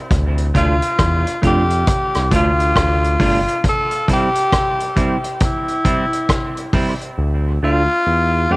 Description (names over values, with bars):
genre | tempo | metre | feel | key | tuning
dub reggae | 68 BPM | 4/4 | swing 62% on 16ths | D minor | A4 = 436 Hz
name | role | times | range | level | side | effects
smooth synth bass | bass | 0.1-8.6 s | G1 to F2 | -18 LUFS | equal | none
vintage drum kit | drums | 0.1-7.2 s | hi-hat, kick drum, rim click | -19 LUFS | equal | none
semi-hollow electric guitar | accompaniment | 0.5-8.6 s | G3 to F4 | -23 LUFS | right 2 dB | cassette tape, dub echo
raspy tenor saxophone | melody | 0.6-8.6 s | E4 to A4 | -18 LUFS | left 1 dB | cassette tape, dub echo
room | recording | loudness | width
light reverb, small room ambience | home recording on cassette | -14 LUFS | side -23 dB against mid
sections
0.0-8.6 A section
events
break 3.6-7.2; part muted 7.2-8.6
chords
0.1 Dm; 3.6 C; 7.2 Dm